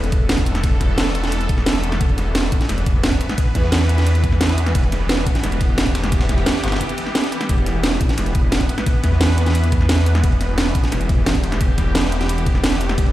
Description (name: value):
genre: dark technical drum and bass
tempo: 175 BPM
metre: 4/4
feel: straight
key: E minor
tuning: A4 = 440 Hz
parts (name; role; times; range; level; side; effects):
- swarming drone; sustained chords; 0.0-13.1 s; E3 to B4; -25 LUFS; equal; built-in reverb, sidechain pumping
- snarling distorted saw bass; bass; 0.0-13.1 s; E1 to E2; -19 LUFS; equal; distortion, overdrive, sidechain pumping
- drum and bass drum kit; drums; 0.0-13.0 s; hi-hat, snare drum; -21 LUFS; right 1 dB; overdrive
- breakbeat sampler-style drum kit; drums; 0.1-13.1 s; ride cymbal, snare drum; -33 LUFS; equal; none
- electronic kick drum; drums; 0.1-13.0 s; none; -19 LUFS; equal; overdrive
room: light reverb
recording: played on a big sound system in a bare room, large studio reverb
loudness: -16 LUFS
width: side -14 dB against mid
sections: 0.0-13.1 A section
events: break 6.8-7.5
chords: 0.0 E5